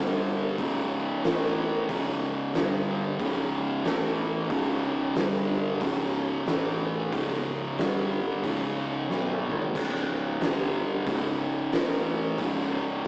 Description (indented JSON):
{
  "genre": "stoner and doom metal",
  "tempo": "92 BPM",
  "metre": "4/4",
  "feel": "swing 62% on 8ths",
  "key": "C# phrygian",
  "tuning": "A4 = 439 Hz",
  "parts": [
    { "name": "tonewheel organ", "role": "sustained chords", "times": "0.0-13.1 s", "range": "G3 to C#5", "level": "-40 LUFS", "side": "equal", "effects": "none" },
    { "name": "thick fuzz guitar", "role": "riff", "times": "0.0-13.1 s", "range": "C#2 to B3", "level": "-29 LUFS", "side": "equal", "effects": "distortion" },
    { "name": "thick fuzz guitar", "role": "riff", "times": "0.0-13.1 s", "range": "C#2 to B3", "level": "-34 LUFS", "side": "right 1 dB", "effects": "distortion" },
    { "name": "picked electric bass", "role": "bass", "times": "0.0-13.0 s", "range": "C#1 to B1", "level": "-40 LUFS", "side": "equal", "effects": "overdrive" },
    { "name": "oversized low-tuned drum kit", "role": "drums", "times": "0.6-13.1 s", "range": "crash cymbal, hi-hat, kick drum, snare drum, toms", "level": "-29 LUFS", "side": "equal", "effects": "none" }
  ],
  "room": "light reverb",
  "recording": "rough rehearsal-room recording, warm saturation, small speaker sound",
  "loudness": "-25 LUFS",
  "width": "side -28 dB against mid",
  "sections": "0.0-13.1 A section",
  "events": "drum fill 9.1-9.8",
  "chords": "0.0 G5; 0.6 C#5; 1.2 A5; 1.9 C#5; 2.6 G5; 3.2 C#5; 3.9 A5; 4.5 C#5; 5.2 G5; 5.8 C#5; 6.5 A5; 7.1 C#5; 7.8 G5; 8.4 C#5; 10.4 G5; 11.1 C#5; 11.7 A5; 12.4 C#5"
}